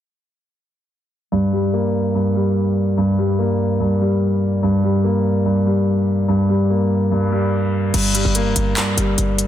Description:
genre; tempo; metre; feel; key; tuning
hip hop, trap; 145 BPM; 4/4; half-time; G minor; A4 = 440 Hz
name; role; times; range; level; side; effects
clear concert grand piano; accompaniment; 1.3-9.5 s; G2 to Bb3; -16 LUFS; equal; none
short 808-style bass; bass; 7.9-9.5 s; F1 to G1; -21 LUFS; equal; none
trap drum kit; drums; 7.9-9.5 s; crash cymbal, handclaps, hi-hat; -21 LUFS; left 1 dB; none
room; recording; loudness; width
light reverb; dense, heavily limited modern master, low-pass filter; -16 LUFS; side -11 dB against mid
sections
1.3-7.9 A section; 7.9-9.5 B section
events
filter sweep 1.3-7.9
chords
1.3 Gm

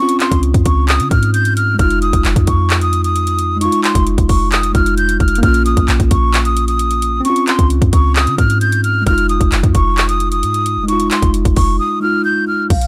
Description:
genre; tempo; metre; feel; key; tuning
hip hop, trap; 132 BPM; 4/4; half-time; F minor; A4 = 441 Hz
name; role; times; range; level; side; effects
breathy hollow jazz flute; melody; 0.0-12.9 s; F5 to G6; -20 LUFS; equal; low-pass filter, analog delay
tine electric piano; accompaniment; 0.0-12.7 s; Ab3 to F4; -22 LUFS; equal; low-pass filter
trap drum kit; drums; 0.1-12.9 s; crash cymbal, handclaps, hi-hat, kick drum; -18 LUFS; equal; none
clean 808-style bass; bass; 0.3-12.9 s; F1 to Db3; -18 LUFS; equal; none
room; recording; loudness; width
digital ambience; dry, gritty hardware recording; -14 LUFS; mono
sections
0.0-12.7 A section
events
break 11.8-12.7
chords
0.0 Dbmaj7; 1.8 Fm7; 5.4 Bbm; 7.2 Dbmaj7; 9.1 Fm7

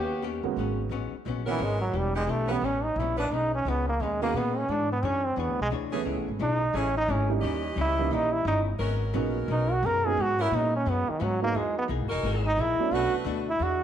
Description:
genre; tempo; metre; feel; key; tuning
jazz; 175 BPM; 4/4; swing 63% on 8ths; G# minor; A4 = 440 Hz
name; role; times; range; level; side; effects
archtop guitar, miked and amplified; accompaniment; 0.0-13.8 s; G#2 to C#5; -35 LUFS; left 11 dB; none
upright bass; bass; 0.0-13.8 s; E1 to A#2; -30 LUFS; equal; none
warm baby grand piano; accompaniment; 0.4-13.2 s; E2 to G#4; -33 LUFS; right 10 dB; none
brilliant trombone; melody; 1.5-13.8 s; D#3 to A#4; -27 LUFS; right 2 dB; none
bright saxophone section; sustained chords; 1.5-13.4 s; D#3 to D#5; -36 LUFS; left 1 dB; none
room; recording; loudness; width
moderate echo chamber reverb, RT60 1.6 s, small room reverb; 1960s-style stereo with parts hard left and right; -25 LUFS; side -9 dB against mid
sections
0.6-11.5 A section; 11.5-13.8 A section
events
trombone solo 0.6-13.8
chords
0.0 D#7alt; 0.6 G#m11; 1.9 Em7; 2.6 A9; 3.3 B69; 4.7 E13; 6.1 Amaj7; 7.4 D#7b9; 8.8 G#m11; 11.5 Emaj9#11; 12.9 Bm7

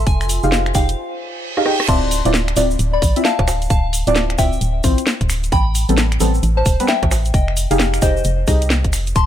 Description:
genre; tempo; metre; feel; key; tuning
UK garage, two-step garage; 132 BPM; 4/4; swing 63% on 16ths; D dorian; A4 = 440 Hz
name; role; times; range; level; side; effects
organ-like FM bass; bass; 0.0-9.3 s; D1 to C2; -18 LUFS; equal; tube saturation
warbly tape-like pad; texture; 0.0-1.0 s; F4 to C6; -28 LUFS; right 3 dB; chorus, built-in reverb, sidechain pumping
soft synth bell; melody; 0.1-9.3 s; C5 to C6; -23 LUFS; left 3 dB; chorus, phaser, digital delay
electronic kick drum; drums; 0.1-9.3 s; none; -18 LUFS; equal; none
garage drum kit; drums; 0.1-9.3 s; bongos, crash cymbal, finger snaps, hi-hat, rim click, snare drum; -22 LUFS; equal; none
tube shaker; percussion; 0.1-9.3 s; none; -28 LUFS; right 1 dB; none
deep mellow chord stab; stabs; 0.4-8.6 s; G3 to G5; -20 LUFS; equal; chorus, digital delay
reverse cymbal; sound effects; 1.2-1.9 s; none; -25 LUFS; right 5 dB; none
room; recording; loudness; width
little or no reverb; none; -14 LUFS; side -11 dB against mid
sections
0.0-1.9 A section; 1.9-9.3 B section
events
filter sweep on synth stab 0.0-1.9; break 1.0-1.9; reverse cymbal 1.2-1.9; drum fill 1.5-1.9; drop 1.9-9.3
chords
0.1 Fm9; 1.9 Dm9; 5.5 Am9; 7.3 Fm9

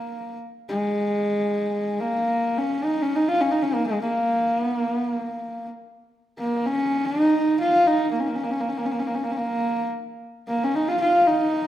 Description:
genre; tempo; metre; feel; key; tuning
mongolian traditional, Mongolian folk; free time; none; none; Bb yu mode; A4 = 440 Hz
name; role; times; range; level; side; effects
rich horsehead fiddle; solo; 0.0-11.7 s; Ab3 to F4; -21 LUFS; equal; none
room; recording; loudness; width
wet large studio reverb, RT60 1.4 s; band playing live in one room; -21 LUFS; side -12 dB against mid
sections
0.0-11.7 A section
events
none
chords
none

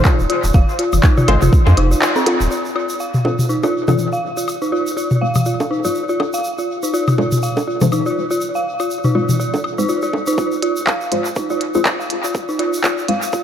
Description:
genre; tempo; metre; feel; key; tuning
minimal techno; 122 BPM; 4/4; swing 57% on 16ths; F minor; A4 = 441 Hz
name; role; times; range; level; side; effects
tube shaker; percussion; 0.0-13.4 s; none; -32 LUFS; right 4 dB; dub echo
dark detuned synth bell; riff; 0.1-13.4 s; C4 to F5; -19 LUFS; equal; chorus, sidechain pumping, low-pass filter, analog delay
electronic kick drum; drums; 0.1-1.6, 10.4-13.4 s; none; -14 LUFS; equal; overdrive, high-pass filter on kick
minimal click drum kit; drums; 0.1-2.4, 10.6-13.2 s; handclaps, hi-hat; -22 LUFS; equal; overdrive, low-pass filter on snare, low-pass filter on hats, dub echo
electronic woodblock, toms and bongos; percussion; 0.1-10.2 s; none; -19 LUFS; left 1 dB; overdrive, analog delay
saturated sub bass; bass; 0.2-2.5 s; Eb1 to F2; -15 LUFS; equal; sidechain pumping
filtered dub chord stab; stabs; 1.3-13.2 s; Ab3 to C5; -24 LUFS; left 1 dB; phaser, lush chorus, dub echo
room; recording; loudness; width
light reverb; echo-heavy mix; -15 LUFS; side -9 dB against mid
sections
0.0-2.5 A section; 2.5-10.4 B section; 10.4-13.4 C section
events
drop 0.0-2.5; break 2.0-2.5; band accent 2.0; build-up 10.4-13.4; filter sweep on synth stab 10.4-13.4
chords
0.0 N.C.; 2.5 Fm

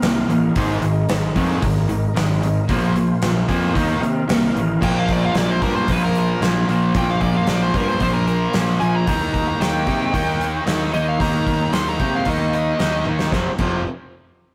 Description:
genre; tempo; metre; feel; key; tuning
hard rock; 113 BPM; 4/4; straight; unclear; A4 = 442 Hz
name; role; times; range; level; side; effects
tonewheel organ; sustained chords; 0.0-4.8 s; Ab3 to F5; -32 LUFS; equal; chorus vibrato, fast rotary speaker
cranked stack guitar; riff; 0.0-13.8 s; F2 to Eb4; -24 LUFS; equal; overdrive
overdriven electric guitar; riff; 0.0-13.8 s; F2 to Eb4; -31 LUFS; equal; none
fuzz picked electric bass; bass; 0.0-13.8 s; F1 to C3; -24 LUFS; equal; overdrive
gated 80s drum kit; drums; 0.0-13.7 s; crash cymbal, hi-hat, kick drum, snare drum, toms; -26 LUFS; equal; none
nasal lead guitar with a parked wah; melody; 4.8-13.1 s; Bb4 to C6; -27 LUFS; equal; overdrive
room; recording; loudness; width
moderate stone room reverb, RT60 1.2 s; rough rehearsal-room recording; -19 LUFS; mono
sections
0.0-4.8 A section; 4.8-13.3 B section; 13.3-14.5 C section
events
lead electric guitar solo 4.8-13.3; drum fill 13.1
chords
0.0 Ebsus2; 0.6 Ab5; 2.7 Bb5; 3.7 Eb5; 4.8 Bb5; 9.1 Eb; 13.3 F5

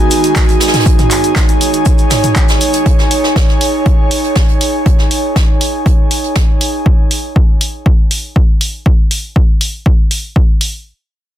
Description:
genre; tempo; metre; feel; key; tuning
acid house; 120 BPM; 4/4; straight; G# minor; A4 = 440 Hz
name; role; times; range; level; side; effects
warbly tape-like pad; sustained chords; 0.0-2.8 s; D#3 to F#4; -19 LUFS; right 4 dB; chorus, built-in reverb, sidechain pumping
airy breathy pad; texture; 0.0-6.9 s; D#4 to G#5; -16 LUFS; right 1 dB; chorus, sidechain pumping
punchy analog drum machine; drums; 0.1-10.7 s; handclaps, hi-hat, toms; -17 LUFS; right 1 dB; none
soft brush drum kit; drums; 0.1-6.7 s; hi-hat, snare drum; -21 LUFS; right 2 dB; high-pass filter on hats, high-pass filter on snare, high-pass filter on room
cabasa; percussion; 0.1-2.8 s; none; -24 LUFS; left 4 dB; none
electronic kick drum; drums; 0.4-10.5 s; none; -11 LUFS; equal; none
room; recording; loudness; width
light reverb; dense, heavily limited modern master; -10 LUFS; side -12 dB against mid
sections
0.0-10.9 A section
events
none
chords
0.0 G#m

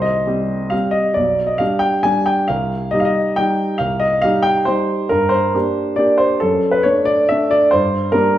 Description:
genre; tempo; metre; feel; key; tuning
classical, piano waltz; 137 BPM; 3/4; uneven beats, rubato; C minor; A4 = 440 Hz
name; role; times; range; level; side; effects
warm upright piano; solo; 0.0-8.4 s; B1 to Ab5; -14 LUFS; equal; none
room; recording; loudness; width
wet recital hall reverb, RT60 1.4 s; recorded in a church or concert hall; -14 LUFS; side -12 dB against mid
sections
0.0-8.4 A section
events
none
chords
0.0 Cm; 1.2 G/B; 2.5 Cm; 5.1 Gm; 6.4 D/F#; 7.7 Gm

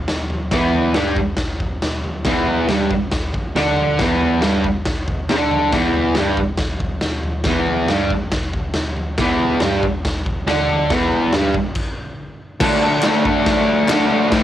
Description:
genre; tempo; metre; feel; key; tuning
garage rock duo or trio; 139 BPM; 4/4; straight; E minor; A4 = 441 Hz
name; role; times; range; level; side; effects
raw garage drum kit; drums; 0.1-14.4 s; crash cymbal, kick drum, snare drum, toms; -21 LUFS; equal; cassette tape
fuzz guitar; riff; 0.5-14.4 s; E2 to D4; -16 LUFS; equal; distortion
group handclap; percussion; 13.0-14.0 s; none; -25 LUFS; left 4 dB; none
room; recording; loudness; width
light reverb; home recording on cassette; -16 LUFS; side -12 dB against mid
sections
0.0-12.6 A section; 12.6-14.4 B section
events
stop 11.8-12.6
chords
0.0 Em; 12.6 D5

